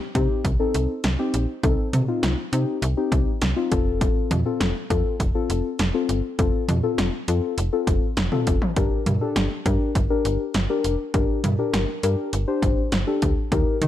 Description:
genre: synth-pop.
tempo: 101 BPM.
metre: 4/4.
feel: straight.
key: G minor.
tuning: A4 = 438 Hz.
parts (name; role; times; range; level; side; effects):
punchy analog drum machine; drums; 0.1-13.9 s; hi-hat, kick drum, snare drum, toms; -24 LUFS; equal; none.
muted felt-like synth keys; accompaniment; 0.2-13.8 s; C4 to C5; -25 LUFS; left 5 dB; chorus.
slap-like FM bass; bass; 0.2-13.9 s; F1 to Eb3; -24 LUFS; equal; none.
room: light reverb, digital ambience.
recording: none.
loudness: -20 LUFS.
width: side -12 dB against mid.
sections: 0.0-13.9 A section.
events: none.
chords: 0.0 Cm; 3.7 F; 8.8 Gm.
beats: 0.45 1.04 | 1.64 2.23 2.83 3.42 | 4.01 4.61 5.20 5.79 | 6.39 6.98 7.58 8.17 | 8.77 9.36 9.95 10.55 | 11.14 11.74 12.33 12.92 | 13.52.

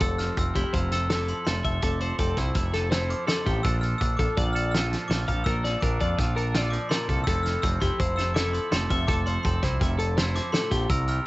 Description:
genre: math rock and midwest emo.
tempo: 165 BPM.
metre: 5/4.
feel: straight.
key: F major.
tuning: A4 = 440 Hz.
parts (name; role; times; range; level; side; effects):
glockenspiel with brass mallets; melody; 0.0-11.3 s; C6 to F6; -33 LUFS; equal; cassette tape, analog delay.
twangy electric guitar; accompaniment; 0.0-11.3 s; F2 to Bb4; -32 LUFS; right 4 dB; cassette tape.
twelve-string electric guitar; arpeggios; 0.0-10.9 s; G4 to F5; -31 LUFS; left 3 dB; cassette tape, analog delay.
growling picked electric bass; bass; 0.0-11.2 s; F1 to F2; -27 LUFS; equal; overdrive.
loose indie drum kit; drums; 0.0-11.2 s; hi-hat, kick drum, snare drum; -27 LUFS; equal; none.
room: little or no reverb.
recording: home recording on cassette, nothing above 8.0 kHz.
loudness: -23 LUFS.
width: side -20 dB against mid.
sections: 0.0-11.3 A section.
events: none.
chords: 0.0 Fmaj7; 3.6 Bbmaj7; 7.3 Fmaj7.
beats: | 0.01 0.37 0.74 1.10 1.47 | 1.83 2.19 2.56 2.92 3.29 | 3.65 4.01 4.38 4.74 5.10 | 5.46 5.83 6.19 6.55 6.92 | 7.28 7.64 8.00 8.37 8.73 | 9.09 9.45 9.81 10.18 10.54 | 10.90 11.26.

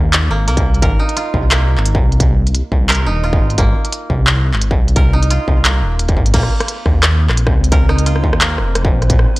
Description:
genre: half-time drum and bass.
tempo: 174 BPM.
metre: 4/4.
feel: swing 54% on 16ths, half-time.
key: unclear.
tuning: A4 = 438 Hz.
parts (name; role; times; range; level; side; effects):
koto; arpeggios; 0.0-9.4 s; Bb3 to Bb4; -23 LUFS; right 2 dB; analog delay.
dark detuned saw bass; bass; 0.0-9.3 s; Eb1 to Eb2; -14 LUFS; equal; none.
industrial drum kit; drums; 0.1-9.4 s; crash cymbal, handclaps, hi-hat, rim click; -18 LUFS; equal; none.
electronic kick drum; drums; 0.6-9.2 s; none; -15 LUFS; equal; distortion.
metallic inharmonic drone; texture; 7.3-9.4 s; C4; -28 LUFS; left 3 dB; chorus, built-in reverb, phaser.
room: digital ambience.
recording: dry, gritty hardware recording.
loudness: -12 LUFS.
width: side -20 dB against mid.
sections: 0.0-9.4 A section.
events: none.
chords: 0.0 Bb5; 0.8 Ab; 6.3 Bbm.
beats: 0.13 0.48 | 0.82 1.17 1.51 1.86 | 2.20 2.55 2.89 3.24 | 3.58 3.93 4.27 4.62 | 4.96 5.31 5.65 6.00 | 6.34 6.68 7.03 7.38 | 7.72 8.06 8.41 8.75 | 9.10.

